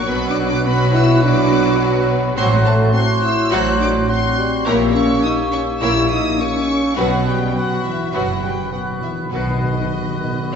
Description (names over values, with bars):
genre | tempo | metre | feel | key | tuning
quick classical-period movement for symphony orchestra | 104 BPM | 4/4 | straight | unclear | A4 = 444 Hz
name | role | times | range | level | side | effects
rich studio violin section | melody | 0.0-10.6 s | D#5 to F#6 | -26 LUFS | left 3 dB | none
bright small flute group | second line | 0.0-10.6 s | E6 to F#6 | -29 LUFS | equal | none
rich studio violin section | second line | 0.0-10.6 s | F#4 to C#5 | -28 LUFS | left 3 dB | none
warm studio viola section | accompaniment | 0.0-10.6 s | F#3 to F#4 | -26 LUFS | right 4 dB | none
rich studio cello section | bass | 0.0-10.6 s | F#2 to B2 | -24 LUFS | equal | none
warm studio double bass section | bass | 0.0-10.6 s | F#1 to B1 | -22 LUFS | right 1 dB | none
warm clarinet | second line | 0.1-10.6 s | F#4 to G4 | -28 LUFS | left 2 dB | none
warm oboe | second line | 0.1-10.6 s | B4 to C#5 | -26 LUFS | right 2 dB | none
mellow bassoon | accompaniment | 0.1-10.6 s | F#3 to B3 | -25 LUFS | right 1 dB | none
mellow French horn section | sustained chords | 0.1-10.6 s | D#3 to F#4 | -21 LUFS | left 1 dB | none
timpani | percussion | 7.0-10.5 s | B2 | -26 LUFS | right 1 dB | none
room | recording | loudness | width
wet scoring stage reverb, RT60 2.1 s | heard from further back in the room, nothing above 7.8 kHz | -15 LUFS | side -7 dB against mid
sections
0.0-10.6 A section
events
timpani fill 7.0-10.6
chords
0.1 Bm; 2.4 F#dim/A; 4.7 A#dim7; 7.0 B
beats
| 0.08 0.65 1.22 1.79 | 2.37 2.94 3.51 4.09 | 4.67 5.25 5.82 6.40 | 6.98 7.56 8.14 8.73 | 9.33 9.93 10.53